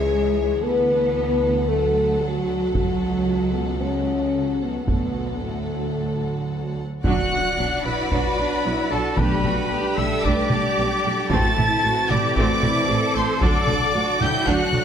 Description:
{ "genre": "cinematic, epic orchestral film score", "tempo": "113 BPM", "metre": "4/4", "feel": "straight", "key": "B phrygian from 7.0 s", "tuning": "A4 = 438 Hz", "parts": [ { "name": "warm symphonic violin section", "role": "melody", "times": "0.0-14.8 s", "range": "E5 to A6", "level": "-28 LUFS", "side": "left 3 dB", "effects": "none" }, { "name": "rich symphonic violin section", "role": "second line", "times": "0.0-14.8 s", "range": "E4 to D5", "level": "-31 LUFS", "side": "left 2 dB", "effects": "none" }, { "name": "rich symphonic viola section", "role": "accompaniment", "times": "0.0-14.8 s", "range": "E3 to D4", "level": "-29 LUFS", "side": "right 2 dB", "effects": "none" }, { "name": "dark French horn section", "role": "sustained chords", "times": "0.0-14.8 s", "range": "E3 to B4", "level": "-25 LUFS", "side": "left 3 dB", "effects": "none" }, { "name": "rich symphonic cello section", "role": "bass", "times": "0.0-14.8 s", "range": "A2 to B4", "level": "-28 LUFS", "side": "right 2 dB", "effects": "none" }, { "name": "rich symphonic double bass section", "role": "bass", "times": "0.0-14.8 s", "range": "A1 to D2", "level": "-27 LUFS", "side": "right 3 dB", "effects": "none" }, { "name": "taiko ensemble", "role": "drums", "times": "2.8-14.8 s", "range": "none", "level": "-25 LUFS", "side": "equal", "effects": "none" }, { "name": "timpani", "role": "percussion", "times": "2.8-3.5, 9.2-9.9 s", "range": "B2 to C#3", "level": "-29 LUFS", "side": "left 2 dB", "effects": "none" }, { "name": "bright trumpet", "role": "stabs", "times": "7.0-14.8 s", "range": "A4 to A5", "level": "-27 LUFS", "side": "right 2 dB", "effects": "none" }, { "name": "impact", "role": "sound effects", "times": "7.0-9.2 s", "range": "none", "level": "-32 LUFS", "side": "equal", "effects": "none" }, { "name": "silver concert flute", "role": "second line", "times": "7.1-14.8 s", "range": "A4 to A5", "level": "-29 LUFS", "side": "left 1 dB", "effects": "none" } ], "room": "wet scoring stage reverb, RT60 1.5 s", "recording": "none", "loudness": "-19 LUFS", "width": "side -8 dB against mid", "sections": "0.0-7.0 A section; 7.0-14.8 B section", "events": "impact 7.0-9.2", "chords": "0.0 C#m; 0.6 D; 2.8 F#m/C#; 4.9 D; 7.0 Bm; 9.2 Gadd9/B; 11.3 Am; 13.4 D" }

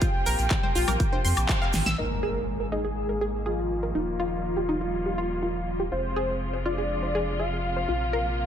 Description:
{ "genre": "progressive house", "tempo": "122 BPM", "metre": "4/4", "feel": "straight", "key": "unclear", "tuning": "A4 = 441 Hz", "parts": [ { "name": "wide unison lead", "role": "melody", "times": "0.0-8.5 s", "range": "F4 to G5", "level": "-30 LUFS", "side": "equal", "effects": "digital delay" }, { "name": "bright studio string section", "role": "sustained chords", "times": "0.0-8.5 s", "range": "C3 to Ab4", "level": "-35 LUFS", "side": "left 2 dB", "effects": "sidechain pumping, low-pass filter" }, { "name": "analog pluck", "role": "arpeggios", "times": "0.0-8.2 s", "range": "Eb4 to E6", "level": "-31 LUFS", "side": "equal", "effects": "chorus, sidechain pumping, dub echo" }, { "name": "big-room dance drum kit", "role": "drums", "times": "0.0-2.0 s", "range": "handclaps, hi-hat, snare drum, woodblock", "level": "-30 LUFS", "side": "equal", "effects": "none" }, { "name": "electronic kick drum", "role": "drums", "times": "0.0-1.6 s", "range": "none", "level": "-25 LUFS", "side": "equal", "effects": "none" }, { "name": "egg shaker", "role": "percussion", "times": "0.0-2.0 s", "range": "none", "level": "-37 LUFS", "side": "right 4 dB", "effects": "none" }, { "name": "round analog bass", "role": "bass", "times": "0.3-8.5 s", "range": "Eb1 to F2", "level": "-31 LUFS", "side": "equal", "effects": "sidechain pumping" }, { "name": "congas", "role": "percussion", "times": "0.6-1.2 s", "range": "none", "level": "-36 LUFS", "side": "left 7 dB", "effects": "overdrive, sidechain pumping on perc" }, { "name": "impact", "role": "sound effects", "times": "2.0-4.0 s", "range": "none", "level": "-37 LUFS", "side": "equal", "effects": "none" } ], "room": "light reverb, digital ambience", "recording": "none", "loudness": "-24 LUFS", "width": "side -9 dB against mid", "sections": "0.0-2.0 A section; 2.0-8.5 B section", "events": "band accent 1.5; drum fill 1.7; impact 2.0-4.0; filter sweep on string section 2.0-8.5", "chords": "0.0 Bbsus2; 2.0 Absus2; 4.0 Ebadd9; 5.9 Fm; 7.9 Bbsus2" }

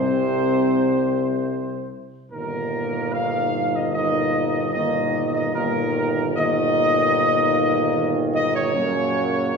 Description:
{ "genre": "classical", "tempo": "75 BPM", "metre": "4/4", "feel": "straight", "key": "unclear", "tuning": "A4 = 441 Hz", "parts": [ { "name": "mellow trumpet section", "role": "melody", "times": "0.0-9.5 s", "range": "Bb4 to F5", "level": "-22 LUFS", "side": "equal", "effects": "none" }, { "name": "bright trombone section", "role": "sustained chords", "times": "0.0-9.5 s", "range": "Bb2 to Gb3", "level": "-27 LUFS", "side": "right 2 dB", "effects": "none" }, { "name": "warm French horn section", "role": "sustained chords", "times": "0.0-9.6 s", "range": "Bb3 to Eb4", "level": "-26 LUFS", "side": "left 3 dB", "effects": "none" }, { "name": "clear tuba", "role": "bass", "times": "0.0-9.6 s", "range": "Gb1 to C2", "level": "-26 LUFS", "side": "right 2 dB", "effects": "none" } ], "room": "wet recital hall reverb, RT60 1.4 s", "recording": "recorded in a church or concert hall", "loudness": "-19 LUFS", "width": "side -5 dB against mid", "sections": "0.0-9.6 A section", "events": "none", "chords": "0.0 N.C.; 2.3 Eb/G; 8.7 Gb" }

